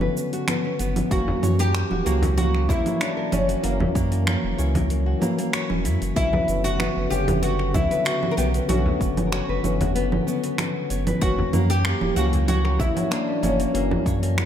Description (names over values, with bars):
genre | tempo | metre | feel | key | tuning
organic downtempo | 95 BPM | 4/4 | straight | B harmonic minor | A4 = 440 Hz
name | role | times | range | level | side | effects
tine electric piano | accompaniment | 0.0-14.5 s | C#3 to C#5 | -28 LUFS | left 4 dB | sidechain pumping, ping-pong delay
nylon-string guitar | arpeggios | 0.0-14.4 s | A#3 to C#5 | -30 LUFS | left 1 dB | ping-pong delay
warm sub bass | bass | 0.0-14.5 s | E1 to F#2 | -24 LUFS | right 1 dB | sidechain pumping
deep house drum kit | drums | 0.0-14.5 s | cabasa, congas, finger snaps, hi-hat | -27 LUFS | right 2 dB | overdrive
oud | melody | 1.1-14.5 s | C#4 to A#4 | -27 LUFS | equal | tape echo
electronic kick drum | drums | 1.1-14.2 s | none | -25 LUFS | equal | overdrive
frame drum | percussion | 1.3-14.0 s | none | -30 LUFS | left 1 dB | none
room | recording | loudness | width
moderate plate reverb, RT60 2.4 s | dreamy mix soaked in reverb | -20 LUFS | side -9 dB against mid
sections
0.0-14.5 A section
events
none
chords
0.0 Bmadd9; 1.1 F#7; 6.2 Bmadd9; 11.2 F#7